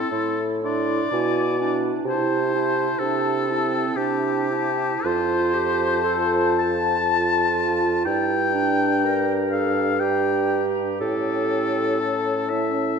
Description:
classical, slow romantic movement for wind quintet; 60 BPM; 3/4; uneven beats, rubato; A4 = 440 Hz
silver concert flute; melody; 0.0-13.0 s; G5 to C6; -30 LUFS; left 11 dB
clear oboe; second line; 0.0-13.0 s; G4 to A5; -25 LUFS; left 4 dB
clear French horn; accompaniment; 0.0-13.0 s; C#4 to F4; -29 LUFS; left 2 dB
clear clarinet; accompaniment; 0.0-13.0 s; C4 to Bb4; -27 LUFS; right 8 dB
dark bassoon; bass; 0.1-13.0 s; F2 to C3; -24 LUFS; right 3 dB
wet concert hall reverb, RT60 2.1 s; dark, warm production; -20 LUFS; side -6 dB against mid
0.0-13.0 A section
0.0 Am; 1.1 E7/B; 2.1 Am/C; 5.1 F; 8.1 Gm; 11.0 A7
0.11 1.13 | 2.06 3.00 3.97 | 5.05 6.07 7.08 | 8.06 9.03 10.02 | 11.01 12.00

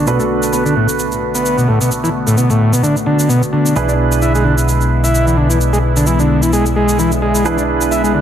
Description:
breakbeat, breaks; 130 BPM; 4/4; swing 56% on 16ths; A4 = 440 Hz
phased analog pad; sustained chords; 0.0-8.2 s; D3 to F#4; -20 LUFS; left 2 dB; phaser, chorus
combo organ; riff; 0.0-8.2 s; A2 to E4; -15 LUFS; equal; overdrive, vintage 12-bit sampler grit, low-pass filter, analog delay
warm baby grand piano; stabs; 0.0-8.2 s; D4 to B4; -20 LUFS; right 6 dB; vintage 12-bit sampler grit, low-pass filter, analog delay
picked electric bass; bass; 0.0-8.2 s; B1; -18 LUFS; left 1 dB; tube saturation, low-pass filter
shaker; drums; 0.1-8.1 s; -23 LUFS; right 1 dB
light reverb, studio reverb; echo-heavy mix; -12 LUFS; side -9 dB against mid
0.0-8.2 A section
filter sweep on transistor combo organ 0.0-8.2
0.0 Bm7; 3.8 E7/B
| 0.07 0.53 0.99 1.46 | 1.92 2.38 2.84 3.30 | 3.76 4.23 4.69 5.15 | 5.61 6.07 6.53 7.00 | 7.46 7.92

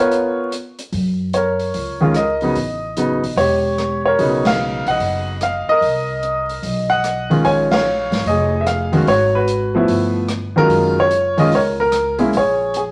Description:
jazz piano trio; 147 BPM; 4/4; swing 65% on 8ths; F# major; A4 = 440 Hz
clear grand piano; melody; 0.0-12.8 s; C#3 to G#5; -18 LUFS; equal
open jazz drum kit; drums; 0.1-12.9 s; hi-hat, ride cymbal, rim click, snare drum; -30 LUFS; equal
upright bass; bass; 0.9-12.9 s; E1 to F#2; -27 LUFS; equal
wet studio reverb, RT60 0.7 s; vinyl crackle; -18 LUFS; mono
0.9-12.9 A section
band accent 4.4, 7.6
0.0 F#maj7 (rootless); 0.9 F#; 2.6 A7; 4.2 Bmaj9; 5.8 Cm7; 6.6 B; 7.4 A#m7; 9.1 G#m7; 9.9 G13; 10.7 F#maj9; 12.3 A#m7
0.12 0.53 | 0.93 1.34 1.75 2.15 | 2.56 2.97 3.37 3.78 | 4.19 4.59 5.00 5.41 | 5.82 6.22 6.63 7.04 | 7.44 7.85 8.26 8.66 | 9.07 9.48 9.89 10.29 | 10.70 11.11 11.52 11.93 | 12.33 12.74

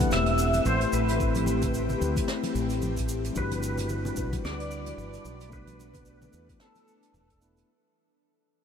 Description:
sunset chillout; 111 BPM; 4/4; swing 57% on 16ths; A dorian; A4 = 440 Hz
pedal steel guitar; melody; 0.0-7.4 s; A4 to F#5; -32 LUFS; equal; ensemble chorus, analog delay
mellow tine electric piano; accompaniment; 0.0-7.7 s; G3 to B4; -33 LUFS; left 2 dB; auto-pan, analog delay
ethereal airy pad; sustained chords; 0.0-7.7 s; G3 to B4; -34 LUFS; left 3 dB; ensemble chorus, built-in reverb, phaser
mellow fretless electric bass; bass; 0.0-7.6 s; E1 to E2; -30 LUFS; equal
electronic kick drum; drums; 0.0-7.4 s; -31 LUFS; equal
jazz brush drum kit; drums; 0.0-7.7 s; hi-hat, shaker, snare drum; -38 LUFS; right 2 dB
congas; percussion; 0.0-7.3 s; -38 LUFS; left 1 dB
moderate huge ambient reverb, RT60 7.3 s; dreamy mix soaked in reverb; -25 LUFS; side -8 dB against mid
0.0-7.7 A section
fade-out 0.0-7.7
0.0 Am9; 3.4 Em9/G; 5.3 Bm7; 6.6 E7sus4
0.12 0.66 | 1.20 1.74 2.28 2.82 | 3.36 3.90 4.44 4.98 | 5.53 6.07 6.61 7.15

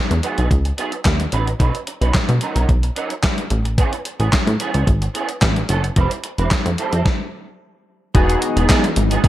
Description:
early-eighties boogie funk; 110 BPM; 4/4; straight; E major; A4 = 440 Hz
electric guitar through a small old amp; riff; 0.1-9.3 s; E3 to B4; -24 LUFS; right 4 dB; ensemble chorus
plucky analog bass; bass; 0.1-9.3 s; E1 to B2; -18 LUFS; equal
clean 12-bit digital drum machine; drums; 0.1-9.3 s; handclaps, hi-hat, kick drum, snare drum; -18 LUFS; equal; gated reverb
chorused polysynth; accompaniment; 8.1-8.8 s; B3 to G#4; -21 LUFS; left 3 dB
soft string machine; sustained chords; 8.1-9.3 s; E3 to D#4; -25 LUFS; left 1 dB; ensemble chorus
digital ambience; -16 LUFS; side -14 dB against mid
0.0-8.1 A section; 8.1-9.3 B section
stop 7.1-8.1
0.0 Emaj9 (rootless); 1.6 Bmaj9; 3.5 Amaj9; 6.0 Fmaj9; 8.1 Emaj9
0.51 1.05 | 1.60 2.15 2.69 3.24 | 3.78 4.33 4.87 5.42 | 5.96 6.51 7.05 7.60 | 8.14 8.69 9.24

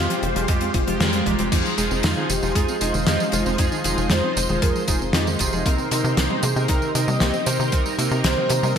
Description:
synthwave; 116 BPM; 4/4; straight; F minor; A4 = 440 Hz
warm velvety synth lead; melody; 0.0-8.8 s; G4 to F5; -28 LUFS; equal; chorus, ping-pong delay
analog string pad; sustained chords; 0.0-8.8 s; Ab3 to C5; -27 LUFS; equal; ensemble chorus, sidechain pumping
soft round pluck; arpeggios; 0.0-8.8 s; Eb3 to F4; -29 LUFS; left 3 dB; chorus, ping-pong delay
chorused polysynth; stabs; 0.0-8.8 s; C3 to Bb4; -27 LUFS; right 3 dB; ping-pong delay
tight sequencer bass; bass; 0.0-8.8 s; F1 to C3; -25 LUFS; equal; sidechain pumping
damped 70s drum kit; drums; 0.1-8.8 s; crash cymbal, hi-hat, snare drum, tambourine; -24 LUFS; equal; studio reverb, gated reverb
electronic kick drum; drums; 0.5-8.8 s; -23 LUFS; equal; studio reverb
moderate lush hall reverb, RT60 1.9 s, studio ambience; bright 1980s-style digital production; -18 LUFS; side -8 dB against mid
0.0-1.5 A section; 1.5-8.8 B section
0.0 Fmadd9; 1.5 Fm7; 5.7 Cm7
0.48 1.00 | 1.52 2.04 2.55 3.07 | 3.59 4.11 4.62 5.14 | 5.66 6.17 6.69 7.21 | 7.73 8.24 8.76

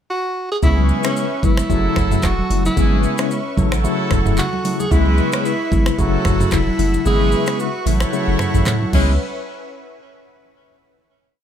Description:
afrobeats; 112 BPM; 4/4; swing 55% on 16ths; C# minor; A4 = 438 Hz
warm tenor saxophone; melody; 0.1-9.2 s; C#4 to G#4; -24 LUFS; equal; plate reverb, ping-pong delay
warm horn section; second line; 0.6-9.1 s; E3 to C#5; -26 LUFS; equal
bell-like tine electric piano; accompaniment; 0.6-9.1 s; C#3 to E4; -21 LUFS; left 3 dB; medium stereo tremolo
lush unison pad; sustained chords; 0.6-9.2 s; C#4 to E6; -29 LUFS; equal; chorus
punchy sub bass; bass; 0.6-9.2 s; E1 to A2; -18 LUFS; equal
afro-pop drum kit; drums; 0.6-9.1 s; crash cymbal, finger snaps, handclaps, hi-hat, kick drum, rim click, shaker, toms; -21 LUFS; right 1 dB
congas; percussion; 0.6-9.2 s; -27 LUFS; right 4 dB
light reverb; -15 LUFS; side -9 dB against mid
0.0-0.6 pickup bar; 0.6-9.2 chorus; 9.2-11.3 final hit
kick muted 7.1-9.2
0.0 N.C.; 0.6 C#m7; 1.7 F#m7; 2.8 C#m7/G#; 3.6 A6; 4.9 C#m7; 6.0 F#m7; 7.1 C#m7/G#; 7.9 A6; 8.9 C#m7; 9.2 N.C.
0.09 | 0.63 1.16 1.70 2.24 | 2.77 3.31 3.84 4.38 | 4.91 5.45 5.99 6.52 | 7.06 7.59 8.13 8.66

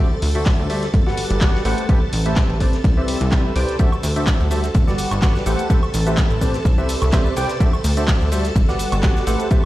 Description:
piano house; 126 BPM; 4/4; swing 54% on 16ths; D mixolydian; A4 = 440 Hz
string machine, violins; sustained chords; 0.0-9.7 s; A4 to A5; -29 LUFS; right 1 dB; ensemble chorus, sidechain pumping
percussive organ stab; riff; 0.0-9.6 s; D3 to G5; -23 LUFS; equal; ensemble chorus, sidechain pumping, digital delay
plucky analog bass; bass; 0.2-9.4 s; G1 to D2; -21 LUFS; equal; sidechain pumping
loose indie drum kit; drums; 0.2-9.6 s; hi-hat, ride cymbal, snare drum; -36 LUFS; left 1 dB; high-pass filter on cymbals, high-pass filter on hats, high-pass filter on snare, high-pass filter on room
punchy analog drum machine; drums; 0.2-9.6 s; handclaps, hi-hat, shaker, woodblock; -28 LUFS; equal
electronic kick drum; drums; 0.5-9.6 s; -16 LUFS; equal
studio ambience; played on a big sound system in a bare room, stone room reverb; -16 LUFS; side -16 dB against mid
0.0-9.7 A section
0.0 D9; 0.9 Gmaj7; 1.7 Am9; 2.8 Cmaj9; 3.8 D9; 4.7 Gmaj7; 5.5 Am9; 6.7 Cmaj9; 7.6 D9; 8.6 Gmaj7
0.46 0.94 1.41 | 1.89 2.37 2.84 3.32 | 3.79 4.27 4.75 5.22 | 5.70 6.18 6.65 7.13 | 7.60 8.08 8.56 9.03 | 9.51

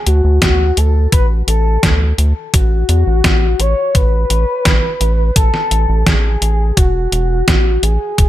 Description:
synthwave; 85 BPM; 4/4; straight; A4 = 440 Hz
expressive synth lead; melody; 0.0-8.3 s; F#4 to C#5; -18 LUFS; left 2 dB; lush chorus, ping-pong delay
round analog bass; bass; 0.1-8.3 s; E1 to E2; -14 LUFS; equal
detuned 8-bit digital drum machine; drums; 0.1-8.3 s; hi-hat, snare drum; -16 LUFS; equal; gated reverb
electronic kick drum; drums; 0.4-8.3 s; -14 LUFS; equal
digital ambience; -11 LUFS; side -14 dB against mid
0.0-8.3 A section
0.0 D5; 2.5 A5
0.42 1.12 1.83 | 2.54 3.24 3.95 4.65 | 5.36 6.07 6.77 7.48 | 8.18

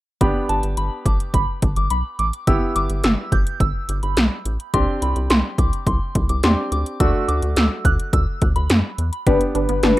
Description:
synth-pop; 106 BPM; 4/4; straight; G major; A4 = 440 Hz
soft synth bell; second line; 0.2-8.7 s; A5 to G6; -26 LUFS; equal; chorus, phaser, plate reverb, digital delay
clear baby grand piano; accompaniment; 0.2-10.0 s; A3 to G4; -26 LUFS; right 2 dB; plate reverb
rubbery square bass; bass; 0.2-10.0 s; G1 to F#2; -22 LUFS; equal
80s electronic pad drums; drums; 0.2-10.0 s; hi-hat, kick drum, snare drum; -19 LUFS; equal
warm velvety synth lead; melody; 9.3-10.0 s; B4; -19 LUFS; left 4 dB; chorus, plate reverb
resonant blip pluck; arpeggios; 9.3-10.0 s; B3 to D4; -23 LUFS; right 2 dB; phaser, plate reverb
light reverb; rough home demo mix; -17 LUFS; side -16 dB against mid
0.2-9.3 A section
0.2 G; 2.5 Em/G; 4.7 Csus2; 7.0 D; 9.3 G
| 0.21 0.78 1.34 1.91 | 2.47 3.04 3.60 4.17 | 4.74 5.30 5.87 6.43 | 7.00 7.57 8.13 8.70 | 9.27 9.83

